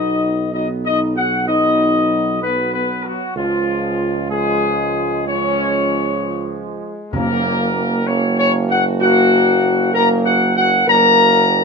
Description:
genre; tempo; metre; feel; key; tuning
classical; 64 BPM; 4/4; straight; F# major; A4 = 441 Hz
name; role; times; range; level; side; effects
mellow trumpet section; melody; 0.0-11.6 s; E#4 to A#5; -17 LUFS; left 2 dB; none
bright trombone section; sustained chords; 0.0-11.6 s; E#3 to B3; -25 LUFS; right 3 dB; none
mellow French horn section; sustained chords; 0.0-11.6 s; E#3 to A#4; -20 LUFS; left 2 dB; none
clear tuba; bass; 0.0-11.6 s; F#1 to C#2; -21 LUFS; right 4 dB; none
timpani; percussion; 7.1-8.5 s; F#2; -26 LUFS; equal; none
room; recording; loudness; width
moderate studio reverb, RT60 0.8 s; minimal, uncompressed stereo recording; -14 LUFS; side -4 dB against mid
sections
0.0-11.6 A section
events
none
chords
0.0 B; 3.4 C#; 7.1 F#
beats
0.52 1.46 2.41 | 3.35 4.29 5.26 6.20 | 7.13 8.06 9.00 9.94 | 10.87

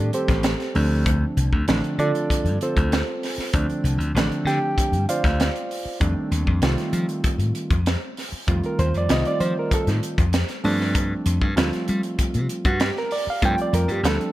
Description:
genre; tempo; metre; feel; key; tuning
electric jazz fusion; 97 BPM; 4/4; straight; F mixolydian; A4 = 440 Hz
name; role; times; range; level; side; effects
reed electric piano; accompaniment; 0.0-14.3 s; D3 to G5; -24 LUFS; right 2 dB; spring reverb
slap bass; bass; 0.0-14.2 s; A1 to G3; -22 LUFS; left 1 dB; none
crisp fusion drum kit; drums; 0.1-14.3 s; hi-hat, kick drum, snare drum; -24 LUFS; equal; none
room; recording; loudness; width
little or no reverb; none; -20 LUFS; side -15 dB against mid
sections
0.0-14.3 A section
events
none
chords
0.0 F13 (rootless); 0.8 Dm7; 6.0 F13; 10.6 G7sus4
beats
0.44 | 1.06 1.68 2.30 2.92 | 3.54 4.16 4.78 5.39 | 6.01 6.63 7.25 7.87 | 8.48 9.10 9.72 10.34 | 10.95 11.57 12.19 12.80 | 13.42 14.04

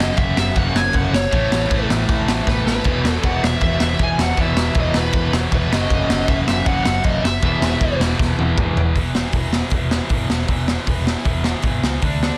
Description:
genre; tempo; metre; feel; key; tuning
punk rock; 157 BPM; 4/4; straight; unclear; A4 = 439 Hz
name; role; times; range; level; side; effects
lead guitar through a small cranked amp; melody; 0.0-8.0 s; B4 to G#5; -25 LUFS; equal; overdrive
cranked stack guitar; riff; 0.0-9.0 s; E2 to A3; -26 LUFS; equal; overdrive
distorted electric guitar; riff; 0.0-12.4 s; E2 to D4; -28 LUFS; equal; distortion
picked electric bass; bass; 0.0-12.3 s; E1 to D2; -26 LUFS; equal; none
raw garage drum kit; drums; 0.0-12.3 s; crash cymbal, hi-hat, kick drum, snare drum, toms; -22 LUFS; equal; none
room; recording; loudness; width
little or no reverb; dense, heavily limited modern master; -19 LUFS; mono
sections
0.0-9.0 A section; 9.0-12.4 B section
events
drum fill 2.5-2.9, 8.2-9.0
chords
0.0 F#5; 1.3 A; 2.9 E5; 5.7 F#5; 7.4 E5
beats
0.18 0.56 0.94 | 1.32 1.71 2.09 2.47 | 2.85 3.23 3.62 4.00 | 4.38 4.76 5.14 5.52 | 5.90 6.28 6.66 7.04 | 7.43 7.81 8.19 8.57 | 8.95 9.34 9.72 10.11 | 10.49 10.88 11.26 11.64 | 12.03

